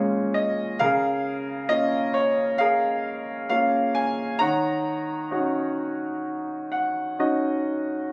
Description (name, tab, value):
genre	classical, lyrical solo piano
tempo	66 BPM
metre	4/4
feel	rubato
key	unclear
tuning	A4 = 439 Hz
part	clear concert grand piano	solo	0.0-8.1 s	Bb2 to Bb5	-25 LUFS	equal	none
room	light reverb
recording	recorded on a phone in the room, club reverb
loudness	-25 LUFS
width	mono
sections	0.0-8.1 A section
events	grand piano fill 6.2-8.1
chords	0.0 Bbm7; 0.8 Db6; 4.4 Ebm7